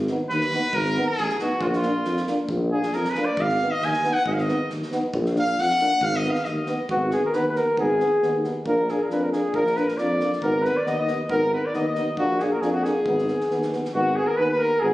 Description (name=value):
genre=balkan folk, Balkan brass band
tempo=136 BPM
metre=2/4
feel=swing 55% on 16ths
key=Ab dorian sharp4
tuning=A4 = 440 Hz
part: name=mellow tuba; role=bass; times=0.0-14.9 s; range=Ab1 to F2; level=-27 LUFS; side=equal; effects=none
part: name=clear euphonium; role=accompaniment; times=0.1-14.9 s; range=Bb3 to Cb4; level=-30 LUFS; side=right 2 dB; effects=none
part: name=mellow French horn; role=accompaniment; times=0.1-14.9 s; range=D4 to Eb4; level=-31 LUFS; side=left 2 dB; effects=none
part: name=natural country drum kit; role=percussion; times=0.1-13.9 s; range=kick drum, snare drum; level=-38 LUFS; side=equal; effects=none
part: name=clear trumpet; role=second line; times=0.3-6.9, 9.5-14.9 s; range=F4 to Ab5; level=-26 LUFS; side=equal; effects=none
part: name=warm flugelhorn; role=melody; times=6.9-14.9 s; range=Gb4 to Eb5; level=-23 LUFS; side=left 1 dB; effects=none
room=moderate recital hall reverb, RT60 1.8 s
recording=recorded on a phone in the room, studio reverb, compression, nothing above 10.5 kHz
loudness=-20 LUFS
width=side -16 dB against mid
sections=0.0-6.9 A section; 6.9-13.9 B section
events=trumpet solo 0.0-6.9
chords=0.0 Abm; 1.6 Bb; 3.4 Abm; 5.1 Bb; 6.0 Abm; 8.7 Bb; 10.4 Abm; 12.2 Bb; 13.1 Abm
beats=0.30 | 0.74 1.18 | 1.62 2.06 | 2.50 2.94 | 3.38 3.82 | 4.26 4.70 | 5.14 5.58 | 6.02 6.46 | 6.90 7.34 | 7.78 8.22 | 8.66 9.10 | 9.54 9.98 | 10.42 10.86 | 11.30 11.74 | 12.18 12.62 | 13.06 13.50 | 13.94 14.38 | 14.82